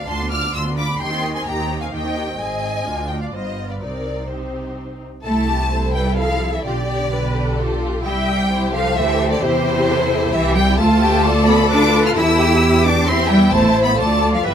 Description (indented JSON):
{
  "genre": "quick classical-period movement for string orchestra",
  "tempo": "130 BPM",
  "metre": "3/4",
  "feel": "rubato",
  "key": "C minor, C major from 5.3 s",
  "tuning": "A4 = 440 Hz",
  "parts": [
    { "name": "rich studio violin section", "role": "melody", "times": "0.0-14.5 s", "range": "C5 to F6", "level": "-22 LUFS", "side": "left 2 dB", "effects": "none" },
    { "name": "warm studio violin section", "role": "second line", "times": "0.0-14.5 s", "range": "E4 to D6", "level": "-23 LUFS", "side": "left 3 dB", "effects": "none" },
    { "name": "warm studio viola section", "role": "accompaniment", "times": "0.0-14.5 s", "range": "B3 to E5", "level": "-25 LUFS", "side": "equal", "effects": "none" },
    { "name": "rich studio cello section", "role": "bass", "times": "0.0-14.5 s", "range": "D2 to F4", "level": "-22 LUFS", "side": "right 1 dB", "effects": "none" },
    { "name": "warm studio double bass section", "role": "bass", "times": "0.0-14.5 s", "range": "G1 to E2", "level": "-21 LUFS", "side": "right 2 dB", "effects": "none" }
  ],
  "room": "light reverb",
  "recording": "close, detailed microphones",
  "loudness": "-15 LUFS",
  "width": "side -8 dB against mid",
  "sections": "0.0-5.3 A section; 5.3-14.5 A section",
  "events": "none",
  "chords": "0.0 Bdim/D; 1.0 Cm/Eb; 2.4 Ab; 2.9 Ddim; 3.3 G7; 3.8 Cm; 5.3 C; 6.7 G7/B; 8.1 C; 9.4 C/E; 10.8 Bdim/D; 12.2 C/E; 13.5 Am; 14.0 Dm",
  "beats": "0.08 0.54 | 1.00 1.46 1.93 | 2.39 2.86 3.33 | 3.81 4.30 4.78 | 5.25 5.72 6.19 | 6.66 7.12 7.59 | 8.05 8.51 8.97 | 9.43 9.89 10.35 | 10.80 11.25 11.71 | 12.17 12.62 13.07 | 13.53 13.99 14.46"
}